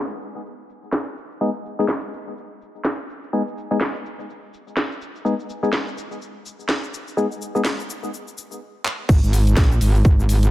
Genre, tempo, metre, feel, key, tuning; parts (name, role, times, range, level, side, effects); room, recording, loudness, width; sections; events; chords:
bass house; 125 BPM; 4/4; swing 58% on 16ths; G# minor; A4 = 439 Hz
house drum kit; drums; 0.1-10.5 s; cabasa, crash cymbal, handclaps, hi-hat, snare drum; -26 LUFS; equal
percussive organ stab; stabs; 1.4-7.6 s; G#3 to G#4; -25 LUFS; left 2 dB; wide subtle chorus, sidechain pumping, digital delay
metallic wobble bass; bass; 9.1-10.5 s; G#1 to A#1; -16 LUFS; equal; chorus, tube saturation, sidechain pumping
electronic kick drum; drums; 9.1-10.2 s; -15 LUFS; equal
light reverb, digital ambience; low-pass filter; -19 LUFS; side -15 dB against mid
0.0-9.1 A section; 9.1-10.5 B section
filter sweep on drum 0.0-9.1; filter sweep on synth stab 0.0-9.1; filter sweep 0.0-9.1; drum fill 8.8; drop 9.1-10.5
0.0 G#m; 9.1 F#add9 (rootless)